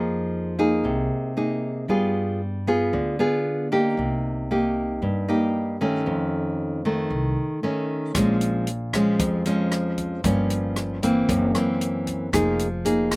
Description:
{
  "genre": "bossa nova",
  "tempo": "115 BPM",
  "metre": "4/4",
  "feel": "straight",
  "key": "F minor",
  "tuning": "A4 = 439 Hz",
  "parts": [
    { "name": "nylon-string guitar", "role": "accompaniment", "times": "0.0-13.2 s", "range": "F2 to Ab4", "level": "-22 LUFS", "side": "equal", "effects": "none" },
    { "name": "upright bass", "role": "bass", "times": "0.0-13.2 s", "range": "F1 to G2", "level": "-30 LUFS", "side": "equal", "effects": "none" },
    { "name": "open jazz drum kit", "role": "drums", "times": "8.1-13.2 s", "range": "hi-hat, kick drum, rim click", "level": "-28 LUFS", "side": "equal", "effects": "none" }
  ],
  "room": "little or no reverb",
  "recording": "recorded outdoors, with no room sound",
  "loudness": "-21 LUFS",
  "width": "side -25 dB against mid",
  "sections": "0.0-13.2 A section",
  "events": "none",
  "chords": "0.0 Fm7; 1.9 G7b9; 4.0 Cm7; 6.1 F7b13; 8.1 Bbm7; 10.2 Gm7b5; 11.3 Gb7#11; 12.3 Fm7",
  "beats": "0.32 0.84 1.36 | 1.88 2.40 2.93 3.45 | 3.97 4.49 5.01 5.54 | 6.06 6.58 7.10 7.63 | 8.15 8.67 9.19 9.72 | 10.24 10.76 11.28 11.81 | 12.33 12.85"
}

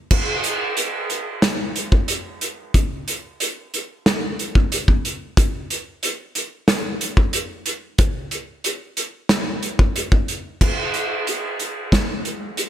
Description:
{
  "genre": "rock",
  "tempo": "92 BPM",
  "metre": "4/4",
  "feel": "straight",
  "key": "none",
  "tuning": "none",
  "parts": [
    { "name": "loose indie drum kit", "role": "drums", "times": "0.1-12.7 s", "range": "crash cymbal, hi-hat, kick drum, snare drum", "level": "-18 LUFS", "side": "equal", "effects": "none" }
  ],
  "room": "light reverb",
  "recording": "none",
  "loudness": "-19 LUFS",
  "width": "side -11 dB against mid",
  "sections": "0.1-10.6 A section; 10.6-12.7 B section",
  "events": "none",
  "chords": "none",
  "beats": "| 0.11 0.77 1.43 2.09 | 2.75 3.40 4.06 4.72 | 5.37 6.03 6.68 7.34 | 7.99 8.65 9.30 9.96 | 10.61 11.27 11.92 12.58"
}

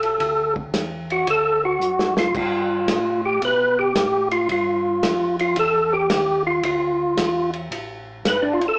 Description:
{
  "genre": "soul jazz organ trio",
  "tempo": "112 BPM",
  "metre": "4/4",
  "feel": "swing 67% on 8ths",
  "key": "unclear",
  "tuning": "A4 = 440 Hz",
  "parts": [
    { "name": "percussive tonewheel organ", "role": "melody", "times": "0.0-8.8 s", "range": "D4 to B4", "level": "-21 LUFS", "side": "equal", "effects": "slow rotary speaker, chorus vibrato, plate reverb" },
    { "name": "mellow tonewheel organ", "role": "bass", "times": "0.0-8.7 s", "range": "G1 to B2", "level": "-35 LUFS", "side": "equal", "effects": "chorus vibrato, slow rotary speaker" },
    { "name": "warm soul drum kit", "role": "drums", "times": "0.0-8.7 s", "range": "crash cymbal, hi-hat, kick drum, ride cymbal, snare drum", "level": "-29 LUFS", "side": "equal", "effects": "none" }
  ],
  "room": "wet small room reverb, RT60 0.5 s",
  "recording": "heard from further back in the room, small speaker sound",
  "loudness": "-21 LUFS",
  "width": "mono",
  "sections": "0.0-8.8 A section",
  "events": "tonewheel organ solo 0.0-8.8; drum fill 1.8-2.3",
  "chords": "0.0 D9; 2.3 G13",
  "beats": "| 0.20 0.73 1.27 1.81 | 2.34 2.88 3.42 3.95 | 4.49 5.03 5.57 6.10 | 6.64 7.18 7.71 8.25"
}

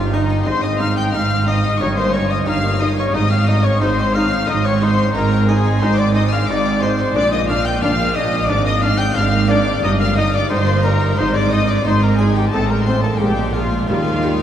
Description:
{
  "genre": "classical, baroque-style concerto movement with solo episodes",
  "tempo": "89 BPM",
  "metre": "4/4",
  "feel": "straight",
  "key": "Ab major",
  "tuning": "A4 = 436 Hz",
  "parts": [
    { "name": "mellow trumpet", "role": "melody", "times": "0.0-14.3 s", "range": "Eb4 to G5", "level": "-23 LUFS", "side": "left 2 dB", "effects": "none" },
    { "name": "rich chamber violin section", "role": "melody", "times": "0.0-14.4 s", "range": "Eb5 to G6", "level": "-26 LUFS", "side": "left 5 dB", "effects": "none" },
    { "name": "clear chamber violin section", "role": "second line", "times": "0.0-14.4 s", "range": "Eb4 to G5", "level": "-23 LUFS", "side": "left 2 dB", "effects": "none" },
    { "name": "harpsichord", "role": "accompaniment", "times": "0.0-14.4 s", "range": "G2 to Db5", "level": "-26 LUFS", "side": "equal", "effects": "none" },
    { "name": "clear chamber cello section", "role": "bass", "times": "0.0-14.4 s", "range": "G2 to Eb3", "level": "-20 LUFS", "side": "right 2 dB", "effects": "none" },
    { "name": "rich chamber double bass section", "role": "bass", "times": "0.0-14.4 s", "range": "G1 to Eb2", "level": "-20 LUFS", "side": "right 2 dB", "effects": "none" },
    { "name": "rich studio viola section", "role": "accompaniment", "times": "0.1-14.3 s", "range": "G3 to Eb4", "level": "-24 LUFS", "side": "equal", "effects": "none" }
  ],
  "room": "wet cathedral reverb, RT60 6.0 s",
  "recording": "dark, warm production",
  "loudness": "-14 LUFS",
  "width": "side -10 dB against mid",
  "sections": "0.0-14.4 A section",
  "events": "none",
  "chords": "0.5 Ab; 1.8 Eb7/G; 3.1 Ab; 5.8 Ab6; 7.2 Bb; 8.5 Bb7/Ab; 9.8 Eb/G; 11.2 Ab5; 12.5 Am; 13.2 Bb5; 13.9 Eb",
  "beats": "| 0.46 1.13 1.80 2.47 | 3.14 3.81 4.48 5.15 | 5.82 6.49 7.16 7.83 | 8.50 9.17 9.84 10.51 | 11.19 11.86 12.53 13.21 | 13.89"
}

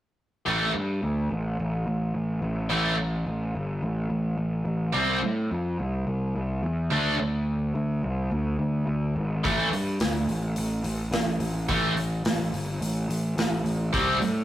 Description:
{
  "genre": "hard rock",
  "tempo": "107 BPM",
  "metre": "4/4",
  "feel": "straight",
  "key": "A minor",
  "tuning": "A4 = 440 Hz",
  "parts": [
    { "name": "heavy high-gain guitar", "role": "riff", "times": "0.5-14.2 s", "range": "A2 to D4", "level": "-27 LUFS", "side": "right 4 dB", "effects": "distortion" },
    { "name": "tight distorted guitar", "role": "riff", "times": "0.5-14.2 s", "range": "A2 to D4", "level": "-29 LUFS", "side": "left 4 dB", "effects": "distortion" },
    { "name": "fuzz picked electric bass", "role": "bass", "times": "0.5-14.4 s", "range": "G1 to A2", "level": "-26 LUFS", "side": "equal", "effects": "overdrive" },
    { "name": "big rock drum kit", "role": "drums", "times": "9.4-14.3 s", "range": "hi-hat, kick drum, snare drum", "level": "-30 LUFS", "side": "equal", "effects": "none" }
  ],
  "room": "light reverb",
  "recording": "rough rehearsal-room recording, warm saturation",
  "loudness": "-24 LUFS",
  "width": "side -13 dB against mid",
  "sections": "0.5-14.4 A section",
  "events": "none",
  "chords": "0.5 A5; 5.0 C; 6.9 D5; 9.4 A5; 13.9 C5",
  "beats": "| 0.47 1.03 1.59 2.15 | 2.71 3.27 3.83 4.39 | 4.95 5.51 6.07 6.63 | 7.20 7.76 8.32 8.88 | 9.44 10.00 10.56 11.13 | 11.69 12.25 12.81 13.38 | 13.94"
}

